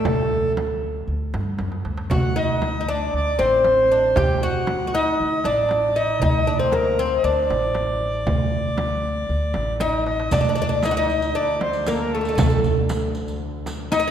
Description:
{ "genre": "Arabic maqam ensemble", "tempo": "117 BPM", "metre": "4/4", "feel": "straight", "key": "D maqam hijaz", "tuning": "A4 = 441 Hz", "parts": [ { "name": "oud", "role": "melody", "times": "0.0-14.1 s", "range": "A3 to G4", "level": "-21 LUFS", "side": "left 1 dB", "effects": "none" }, { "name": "accordion", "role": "second line", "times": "0.0-14.1 s", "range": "A4 to G5", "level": "-26 LUFS", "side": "right 1 dB", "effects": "none" }, { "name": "upright bass", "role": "bass", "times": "0.1-13.6 s", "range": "A1 to G2", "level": "-26 LUFS", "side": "equal", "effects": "none" }, { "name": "darbuka", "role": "percussion", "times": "0.1-14.1 s", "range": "none", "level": "-29 LUFS", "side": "right 3 dB", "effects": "none" }, { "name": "frame drum", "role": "percussion", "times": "0.1-14.0 s", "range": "none", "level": "-30 LUFS", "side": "right 2 dB", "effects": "none" }, { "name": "warm double bass", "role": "drone", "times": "10.3-14.1 s", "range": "D2", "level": "-30 LUFS", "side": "left 1 dB", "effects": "none" }, { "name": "riq", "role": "percussion", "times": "10.3-14.0 s", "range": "none", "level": "-34 LUFS", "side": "right 1 dB", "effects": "none" } ], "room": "wet concert hall reverb, RT60 2.2 s", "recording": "recorded in a church or concert hall", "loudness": "-19 LUFS", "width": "side -9 dB against mid", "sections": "0.0-10.3 A section; 10.3-14.1 B section", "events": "drum fill 1.6-2.1, 9.8-10.3", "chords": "none", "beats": "| 0.05 0.57 1.08 1.59 | 2.11 2.62 3.13 3.65 | 4.16 4.67 5.19 5.70 | 6.21 6.73 7.24 7.75 | 8.27 8.78 9.29 9.81 | 10.32 10.84 11.35 11.86 | 12.38 12.89 13.40 13.92" }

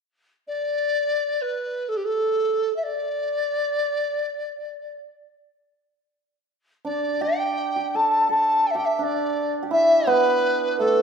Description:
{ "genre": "chinese traditional, Chinese chamber ensemble", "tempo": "free time", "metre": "none", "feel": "none", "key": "D zhi mode", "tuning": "A4 = 440 Hz", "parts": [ { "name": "mellow hollow large dizi", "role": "melody", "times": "0.5-11.0 s", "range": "G4 to A5", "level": "-21 LUFS", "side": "left 1 dB", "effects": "none" }, { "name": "hammered dulcimer", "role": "second line", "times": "6.8-11.0 s", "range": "A3 to A4", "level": "-24 LUFS", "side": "right 4 dB", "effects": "none" } ], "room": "moderate recital hall reverb, RT60 1.7 s", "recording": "minimal, uncompressed stereo recording", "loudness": "-20 LUFS", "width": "side -6 dB against mid", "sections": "0.0-6.8 A section; 6.8-11.0 B section", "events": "none", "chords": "none", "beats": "free time" }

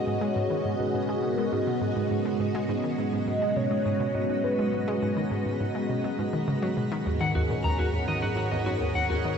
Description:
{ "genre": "ambient, sequencer-driven space music", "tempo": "103 BPM", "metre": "4/4", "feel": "straight", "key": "G# minor", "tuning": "A4 = 440 Hz", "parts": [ { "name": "mellow horn-like synth lead", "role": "melody", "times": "0.0-5.3 s", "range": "G#4 to D#5", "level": "-33 LUFS", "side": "equal", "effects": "analog chorus, analog delay" }, { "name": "string machine, full ensemble", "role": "sustained chords", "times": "0.0-9.4 s", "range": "G#2 to F#5", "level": "-28 LUFS", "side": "equal", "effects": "phaser, ensemble chorus" }, { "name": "analog pluck", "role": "riff", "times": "0.0-9.4 s", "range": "D#2 to G#3", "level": "-30 LUFS", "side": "equal", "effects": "chorus, cassette tape, analog delay" }, { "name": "twinkling granular texture", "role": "texture", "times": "0.4-9.4 s", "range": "B3 to A#5", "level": "-43 LUFS", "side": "right 3 dB", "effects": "built-in reverb" }, { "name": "electric guitar at the edge of break-up", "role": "arpeggios", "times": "7.2-9.2 s", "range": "F#4 to A#5", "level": "-30 LUFS", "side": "left 2 dB", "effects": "auto-pan, analog delay" } ], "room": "wet cathedral reverb, RT60 5.8 s", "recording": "in a vast, echoing space", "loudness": "-25 LUFS", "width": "side -7 dB against mid", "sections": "0.0-9.4 A section", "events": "fade-in on synth texture 0.0-9.4", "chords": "0.0 G#m; 7.1 D#m", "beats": "| 0.07 0.65 1.24 1.82 | 2.40 2.98 3.56 4.15 | 4.73 5.31 5.89 6.48 | 7.06 7.64 8.22 8.81" }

